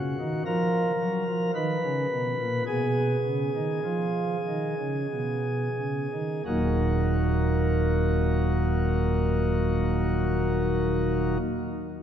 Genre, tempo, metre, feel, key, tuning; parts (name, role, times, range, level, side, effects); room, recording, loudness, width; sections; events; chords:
classical, chorale-style piece for pipe organ; 44-56 BPM; 4/4; rubato; Eb minor; A4 = 440 Hz
pipe organ, sparkling flutes; solo; 0.0-11.4 s; Eb1 to Cb5; -24 LUFS; equal
wet church reverb, RT60 3.6 s; dark, warm production; -24 LUFS; side -9 dB against mid
0.0-6.5 A section; 6.5-11.9 B section
slowing down 0.0-6.5
0.0 Ebm; 1.6 Abm; 6.5 Ebm